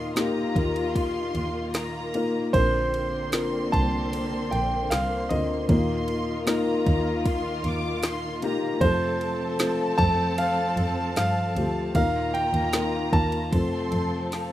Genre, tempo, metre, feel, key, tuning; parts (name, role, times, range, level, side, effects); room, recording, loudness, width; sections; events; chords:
pop ballad; 76 BPM; 4/4; straight; A4 = 441 Hz
clear concert grand piano; melody; 0.0-14.5 s; C5 to A5; -28 LUFS; right 1 dB; tape echo
warm studio violin section; second line; 0.0-14.5 s; F5 to D6; -36 LUFS; right 1 dB
felt-muted upright piano; accompaniment; 0.0-14.5 s; Bb2 to Bb4; -29 LUFS; left 3 dB
dark symphonic string section; sustained chords; 0.0-14.5 s; D3 to A4; -30 LUFS; left 1 dB
warm double bass; bass; 0.0-14.5 s; Bb1 to G2; -29 LUFS; right 1 dB
smooth R&B drum kit; drums; 0.2-14.5 s; kick drum, ride cymbal, snare drum; -26 LUFS; right 1 dB
light reverb; rough home demo mix; -22 LUFS; side -13 dB against mid
0.0-14.5 A section
drum fill 14.3
0.0 Ebsus2; 2.5 Bbadd9; 5.7 Ebsus2; 8.8 F; 12.0 Ebsus2; 13.5 F